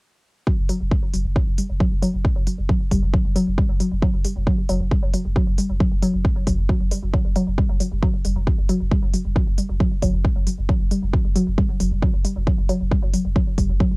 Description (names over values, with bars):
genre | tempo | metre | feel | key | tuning
driving peak-time techno | 135 BPM | 4/4 | straight | unclear | A4 = 440 Hz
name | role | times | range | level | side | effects
woody wave-folded pluck | riff | 0.5-13.9 s | F#3 to G3 | -24 LUFS | equal | chorus, phaser, sidechain pumping, cassette tape, analog delay
electronic kick drum | drums | 0.5-13.9 s | none | -20 LUFS | equal | none
warm sub bass | bass | 0.6-14.0 s | F#1 | -24 LUFS | equal | overdrive, sidechain pumping, low-pass filter
electronic hi-hat | drums | 0.7-13.7 s | none | -33 LUFS | equal | none
room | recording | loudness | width
little or no reverb | home recording on cassette | -18 LUFS | side -27 dB against mid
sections
0.5-14.0 A section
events
none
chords
none